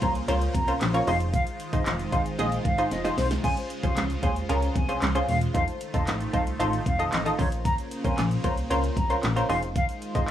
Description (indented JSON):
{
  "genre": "dance-pop",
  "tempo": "114 BPM",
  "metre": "4/4",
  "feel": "straight",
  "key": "unclear",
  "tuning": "A4 = 440 Hz",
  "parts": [
    { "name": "concert flute", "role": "melody", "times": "0.0-10.3 s", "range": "C5 to Bb5", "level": "-31 LUFS", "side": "equal", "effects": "sidechain pumping, tape echo" },
    { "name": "punchy chord stab", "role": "accompaniment", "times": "0.0-10.3 s", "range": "Db4 to Eb5", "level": "-29 LUFS", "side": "equal", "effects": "chorus, sidechain pumping" },
    { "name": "supersaw pad", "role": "sustained chords", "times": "0.0-10.3 s", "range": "Db3 to C5", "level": "-34 LUFS", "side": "equal", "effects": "phaser, sidechain pumping" },
    { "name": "plucky analog bass", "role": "bass", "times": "0.0-10.3 s", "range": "Fb1 to Eb2", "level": "-28 LUFS", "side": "equal", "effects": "sidechain pumping" },
    { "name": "smooth R&B drum kit", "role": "drums", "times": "0.0-10.3 s", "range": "crash cymbal, handclaps, hi-hat, kick drum, snare drum", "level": "-28 LUFS", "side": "equal", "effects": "none" },
    { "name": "tube shaker", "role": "percussion", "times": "0.0-10.3 s", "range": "none", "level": "-53 LUFS", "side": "left 3 dB", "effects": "none" }
  ],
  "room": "little or no reverb",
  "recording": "dry, gritty hardware recording",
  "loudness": "-23 LUFS",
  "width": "side -11 dB against mid",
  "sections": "0.0-10.3 A section",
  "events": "drum fill 2.9-3.4",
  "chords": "0.0 Bbmadd9; 1.1 Fm7; 3.4 Dbmaj7; 5.5 F7; 7.4 Bbmadd9; 9.5 Fm7",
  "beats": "0.28 0.81 | 1.34 1.86 2.39 2.92 | 3.44 3.97 4.49 5.02 | 5.55 6.07 6.60 7.13 | 7.65 8.18 8.70 9.23 | 9.76 10.28"
}